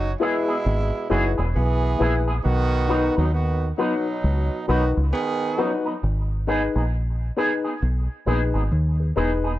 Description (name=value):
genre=reggae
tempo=67 BPM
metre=4/4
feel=swing 62% on 16ths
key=G# minor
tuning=A4 = 439 Hz
part: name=clear horn section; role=second line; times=0.0-5.8 s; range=B2 to G#4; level=-26 LUFS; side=right 3 dB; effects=tape echo
part: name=deep dub fingered electric bass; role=bass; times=0.0-9.6 s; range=E1 to D#2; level=-22 LUFS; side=equal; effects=none
part: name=electric guitar with an envelope filter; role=accompaniment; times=0.2-9.5 s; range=F#3 to G#4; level=-27 LUFS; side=right 2 dB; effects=lush chorus, tape echo
part: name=dark upright piano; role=stabs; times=0.2-9.4 s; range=D#4 to B4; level=-25 LUFS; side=left 5 dB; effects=none
room=small room reverb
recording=dry, close 1970s-style studio recording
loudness=-20 LUFS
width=side -15 dB against mid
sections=0.0-6.0 A section; 6.0-9.6 B section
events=none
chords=0.0 E; 2.4 B; 6.0 G#m